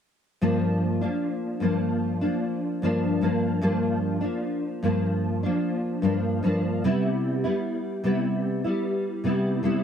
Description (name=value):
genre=indie pop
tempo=75 BPM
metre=4/4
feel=straight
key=unclear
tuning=A4 = 440 Hz
part: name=nylon-string guitar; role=solo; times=0.4-9.8 s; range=G2 to E4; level=-23 LUFS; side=equal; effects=ensemble chorus, warbly pitch drift
room=light reverb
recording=dry, close 1970s-style studio recording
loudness=-23 LUFS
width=side -8 dB against mid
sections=0.4-9.8 A section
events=none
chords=0.4 Gm7; 6.8 Cmaj7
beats=| 0.42 1.22 2.03 2.83 | 3.63 4.43 5.23 6.04 | 6.84 7.64 8.44 9.24